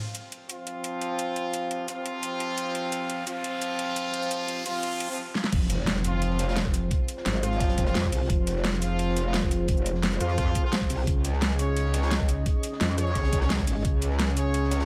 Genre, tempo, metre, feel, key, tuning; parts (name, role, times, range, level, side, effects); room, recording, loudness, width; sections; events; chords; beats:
dark technical drum and bass; 173 BPM; 4/4; straight; F minor; A4 = 441 Hz
dark analog pad; sustained chords; 1.9-14.9 s; Db4 to G5; -38 LUFS; equal; chorus, phaser, sidechain pumping
riser and impact; sound effects; 0.0-6.9 s; -40 LUFS; equal
dubstep drum kit; drums; 0.1-14.8 s; crash cymbal, hi-hat, rim click, shaker, snare drum; -32 LUFS; equal; small room ambience
warm brass ensemble; stabs; 0.5-14.9 s; F3 to Db5; -34 LUFS; equal; tape echo
metallic wobble bass; bass; 5.5-14.9 s; F1 to F2; -29 LUFS; equal; chorus, overdrive
crunchy breakbeat drum kit; drums; 5.5-14.9 s; hi-hat, snare drum; -45 LUFS; equal
electronic kick drum; drums; 5.5-13.9 s; -29 LUFS; equal; small room ambience
light reverb, small room ambience; -27 LUFS; mono
0.0-5.5 A section; 5.5-14.9 B section
build-up 0.0-5.5; riser 0.0-5.2; drum fill 5.4; drop 5.5-14.9; impact 5.5-6.9
0.0 F5; 5.5 Fm; 11.1 Db
0.32 0.67 1.02 | 1.36 1.71 2.06 2.40 | 2.75 3.10 3.44 3.79 | 4.14 4.48 4.83 5.18 | 5.52 5.87 6.22 6.57 | 6.91 7.26 7.61 7.95 | 8.30 8.65 8.99 9.34 | 9.69 10.03 10.38 10.73 | 11.07 11.42 11.77 12.11 | 12.46 12.81 13.15 13.50 | 13.85 14.20 14.54